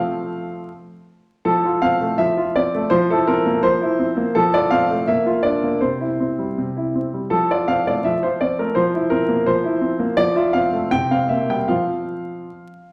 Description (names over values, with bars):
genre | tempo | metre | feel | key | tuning
classical-period piano sonatina | 75-86 BPM | 2/4 | rubato | F major | A4 = 439 Hz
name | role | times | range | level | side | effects
clear grand piano | solo | 0.0-12.9 s | C3 to G5 | -20 LUFS | equal | none
room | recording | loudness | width
wet recital hall reverb, RT60 1.4 s | vinyl crackle | -19 LUFS | mono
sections
0.0-1.5 A section; 1.5-12.9 B section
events
none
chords
0.0 F; 2.9 C7/F; 4.3 F; 5.1 Bb; 5.8 C; 7.3 F; 8.8 C7/F; 10.2 F; 10.9 C5; 11.7 F5